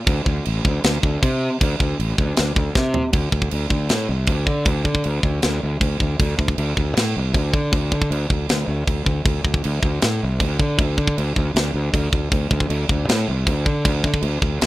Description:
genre	heavy metal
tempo	157 BPM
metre	4/4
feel	straight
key	unclear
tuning	A4 = 439 Hz
part	fuzz fingered electric bass	bass	0.1-14.7 s	A1 to D3	-21 LUFS	equal	overdrive
part	tight metal drum kit	drums	0.1-14.7 s	crash cymbal, kick drum, snare drum, toms	-21 LUFS	equal	none
room	little or no reverb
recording	rough home demo mix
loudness	-18 LUFS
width	side -17 dB against mid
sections	0.0-3.1 A section; 3.1-14.7 B section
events	drum fill 2.8-3.1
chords	none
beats	| 0.08 0.46 0.85 1.23 | 1.61 2.00 2.38 2.76 | 3.15 3.53 3.91 4.30 | 4.68 5.06 5.45 5.83 | 6.21 6.59 6.98 7.36 | 7.74 8.12 8.51 8.89 | 9.27 9.65 10.04 10.42 | 10.80 11.18 11.56 11.95 | 12.33 12.71 13.09 13.48 | 13.86 14.24 14.62

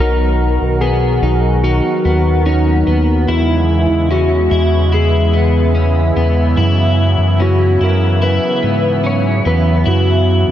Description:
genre	dream pop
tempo	73 BPM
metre	4/4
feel	straight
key	unclear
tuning	A4 = 440 Hz
part	clean lap steel guitar	melody	0.0-10.5 s	D#4 to C#5	-18 LUFS	left 2 dB	lush chorus, analog delay
part	lush unison pad	sustained chords	0.0-10.5 s	C#3 to A#4	-18 LUFS	right 1 dB	chorus
part	electric guitar at the edge of break-up	arpeggios	0.0-10.5 s	B3 to E4	-21 LUFS	left 2 dB	analog chorus, analog delay
part	chorused synth bass	bass	0.0-10.5 s	B1 to G#2	-14 LUFS	equal	none
room	moderate plate reverb, RT60 3.0 s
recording	dreamy mix soaked in reverb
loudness	-11 LUFS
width	side -11 dB against mid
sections	0.0-10.5 A section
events	none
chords	0.0 Bmaj7; 3.3 E6; 6.6 F#7sus4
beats	| 0.00 0.82 1.64 2.46 | 3.28 4.11 4.93 5.75 | 6.57 7.39 8.21 9.04 | 9.86

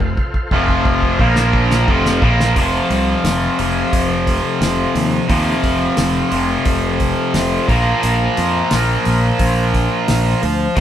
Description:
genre	classic rock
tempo	88 BPM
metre	4/4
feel	straight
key	F major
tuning	A4 = 440 Hz
part	overdriven tonewheel organ	sustained chords	0.0-2.5 s	C4 to F5	-28 LUFS	equal	none
part	overdriven electric guitar	riff	0.0-10.8 s	F2 to Bb3	-19 LUFS	left 4 dB	phaser
part	tight distorted guitar	riff	0.0-10.8 s	F2 to Bb3	-19 LUFS	right 5 dB	distortion
part	growling fingered electric bass	bass	0.0-10.8 s	F1 to F2	-19 LUFS	equal	overdrive
part	damped 70s drum kit	drums	0.0-10.8 s	hi-hat, kick drum, snare drum	-20 LUFS	equal	none
room	moderate studio reverb, RT60 0.8 s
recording	band playing live in one room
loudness	-14 LUFS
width	side -10 dB against mid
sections	0.0-2.6 A section; 2.6-10.8 B section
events	drum fill 0.0-2.6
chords	0.0 F; 1.2 Bb5; 1.9 F; 2.6 F5; 7.7 Bb5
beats	0.52 1.20 1.88 | 2.56 3.25 3.93 4.61 | 5.30 5.98 6.67 7.35 | 8.04 8.72 9.40 10.09 | 10.77

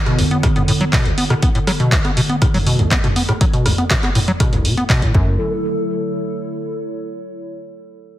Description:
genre	acid house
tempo	121 BPM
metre	4/4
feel	straight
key	unclear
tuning	A4 = 445 Hz
part	warbly tape-like pad	sustained chords	0.0-5.4 s	D3 to A4	-24 LUFS	right 1 dB	chorus, built-in reverb, sidechain pumping
part	warbly tape-like pad	texture	0.0-7.3 s	B3 to D5	-33 LUFS	left 1 dB	chorus, built-in reverb, sidechain pumping
part	acid bass, square	riff	0.1-5.4 s	B1 to B3	-18 LUFS	equal	tube saturation, cassette tape
part	punchy analog drum machine	drums	0.1-5.1 s	handclaps, hi-hat, rim click, toms	-20 LUFS	equal	none
part	electronic kick drum	drums	0.4-5.2 s	none	-18 LUFS	equal	none
part	saturated sub bass	bass	5.1-5.4 s	F#1	-24 LUFS	equal	none
room	light reverb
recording	heavily compressed radio sound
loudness	-14 LUFS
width	side -13 dB against mid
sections	0.0-5.4 A section; 5.4-7.4 B section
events	filter sweep on acid bass 0.0-5.4; filter sweep on ambient pad 0.0-5.4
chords	0.0 Bm7; 5.1 F#m7; 5.4 A/E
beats	0.43 0.93 | 1.43 1.92 2.42 2.91 | 3.41 3.90 4.40 4.90 | 5.39 5.89 6.38 6.88

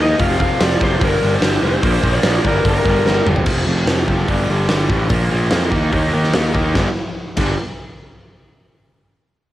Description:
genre	hard rock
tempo	146 BPM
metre	4/4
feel	straight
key	G minor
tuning	A4 = 441 Hz
part	lead guitar through a small cranked amp	melody	0.0-3.2 s	Bb4 to F5	-21 LUFS	left 1 dB	overdrive, cassette tape, analog delay
part	overdriven electric guitar	riff	0.0-7.5 s	F2 to Eb4	-20 LUFS	equal	cassette tape
part	fuzz picked electric bass	bass	0.0-7.6 s	F1 to F2	-18 LUFS	equal	overdrive
part	big rock drum kit	drums	0.2-7.5 s	crash cymbal, hi-hat, kick drum, snare drum, toms	-19 LUFS	equal	cassette tape
room	light reverb, small room ambience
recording	home recording on cassette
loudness	-14 LUFS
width	side -14 dB against mid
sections	0.0-3.5 A section; 3.5-6.8 B section; 6.8-8.4 C section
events	drum fill 3.1-3.5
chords	0.2 F5; 1.0 G5; 1.8 Bb; 2.4 Gm; 3.5 F5; 4.3 G5; 5.1 Bb5; 5.7 Eb5; 6.8 G5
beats	| 0.20 0.60 1.01 1.42 | 1.83 2.24 2.65 3.06 | 3.47 3.88 4.29 4.70 | 5.11 5.52 5.93 6.34 | 6.76 7.17

